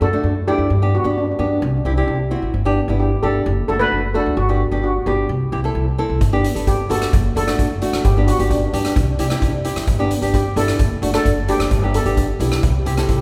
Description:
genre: calypso.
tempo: 131 BPM.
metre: 4/4.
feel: straight.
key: G major.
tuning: A4 = 440 Hz.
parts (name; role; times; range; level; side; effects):
steel pan; melody; 0.0-13.2 s; D4 to B4; -25 LUFS; equal; none.
nylon-string guitar; accompaniment; 0.0-13.2 s; A3 to A4; -24 LUFS; equal; none.
upright bass; bass; 0.0-13.2 s; F#1 to G2; -23 LUFS; equal; none.
street-band drum kit; drums; 6.2-13.2 s; hi-hat, kick drum, rim click; -23 LUFS; equal; none.
room: wet recital hall reverb, RT60 1.7 s.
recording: recorded in a church or concert hall.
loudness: -18 LUFS.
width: mono.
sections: 0.0-13.2 A section.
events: none.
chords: 0.0 D/F#; 0.7 G; 1.6 C; 2.5 G; 3.5 D/F#; 4.4 Gmaj7; 5.3 C; 6.2 Gmaj7; 7.1 D/F#; 8.0 G; 9.0 C; 9.9 G; 10.8 D/F#; 11.7 G; 12.6 C.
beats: 0.24 | 0.70 1.16 1.62 2.08 | 2.54 3.00 3.46 3.92 | 4.38 4.83 5.29 5.75 | 6.21 6.67 7.13 7.59 | 8.04 8.50 8.96 9.42 | 9.88 10.34 10.80 11.26 | 11.71 12.17 12.63 13.09.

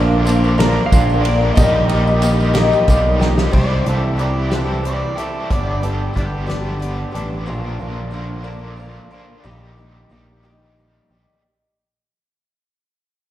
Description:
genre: folk rock and heartland rock.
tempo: 61 BPM (dotted quarters).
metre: 6/8.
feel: straight.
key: unclear.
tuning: A4 = 440 Hz.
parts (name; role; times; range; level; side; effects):
bright baby grand piano; accompaniment; 0.0-3.5 s; D4 to Bb5; -27 LUFS; right 2 dB; none.
picked twelve-string acoustic guitar; accompaniment; 0.0-11.4 s; G2 to Bb4; -23 LUFS; left 4 dB; plate reverb, slapback echo.
mellow tonewheel organ; sustained chords; 0.0-3.5 s; Bb4 to Eb6; -27 LUFS; right 1 dB; slow rotary speaker.
biting overdriven guitar; riff; 0.0-11.4 s; G2 to G4; -23 LUFS; right 1 dB; harmonic tremolo, slapback echo.
picked electric bass; bass; 0.0-11.2 s; G1 to C2; -19 LUFS; equal; none.
natural country drum kit; drums; 0.3-7.3 s; crash cymbal, hi-hat, kick drum, ride cymbal, snare drum; -20 LUFS; equal; none.
tambourine; percussion; 0.3-3.0 s; none; -35 LUFS; right 1 dB; none.
clean lap steel guitar; melody; 0.6-2.8 s; Bb4 to F5; -22 LUFS; right 2 dB; plate reverb, slapback echo.
overdriven harmonica; second line; 3.6-6.5 s; D4 to D5; -28 LUFS; right 1 dB; plate reverb, slapback echo, tape echo.
room: light reverb.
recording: live gig heard through the venue's PA, recital hall reverb.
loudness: -15 LUFS.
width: side -13 dB against mid.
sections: 0.0-3.5 A section; 3.5-11.4 B section.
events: grand piano fill 2.6-3.5; drum fill 3.2-3.5; fade-out 3.5-11.4.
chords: 0.0 Bb; 1.6 Eb/Bb; 3.5 C; 5.5 G; 7.5 Bb; 9.4 Eb/Bb.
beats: 0.59 | 1.57 2.55 | 3.54 4.52 | 5.50 6.49 | 7.47 8.46 | 9.45 10.44.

